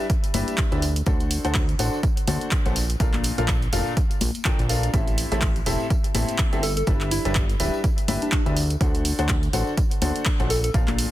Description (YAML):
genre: piano house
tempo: 124 BPM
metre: 4/4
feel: swing 57% on 16ths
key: unclear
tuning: A4 = 442 Hz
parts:
  - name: clear upright piano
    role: riff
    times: 0.0-11.1 s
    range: A2 to G5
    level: -28 LUFS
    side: left 2 dB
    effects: sidechain pumping, ping-pong delay
  - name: electronic kick drum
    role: drums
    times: 0.1-10.9 s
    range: none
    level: -24 LUFS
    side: equal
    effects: overdrive
  - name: punchy analog drum machine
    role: drums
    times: 0.1-11.1 s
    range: handclaps, hi-hat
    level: -29 LUFS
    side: right 1 dB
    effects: overdrive
  - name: tambourine and congas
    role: percussion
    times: 0.1-11.1 s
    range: none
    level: -34 LUFS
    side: left 6 dB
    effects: none
  - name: fat analog bass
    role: bass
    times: 0.3-11.1 s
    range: D1 to D2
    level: -25 LUFS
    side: equal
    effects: sidechain pumping
  - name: soft struck synth lead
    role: melody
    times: 6.6-10.7 s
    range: D4 to A4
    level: -30 LUFS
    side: right 1 dB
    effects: chorus, ping-pong delay
room: digital ambience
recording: dense, heavily limited modern master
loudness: -20 LUFS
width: side -14 dB against mid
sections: 0.0-11.1 A section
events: none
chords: 0.0 G6; 0.8 D7; 2.8 Bbmaj7; 4.9 Am7; 6.6 G6; 8.6 D7; 10.5 Bbmaj7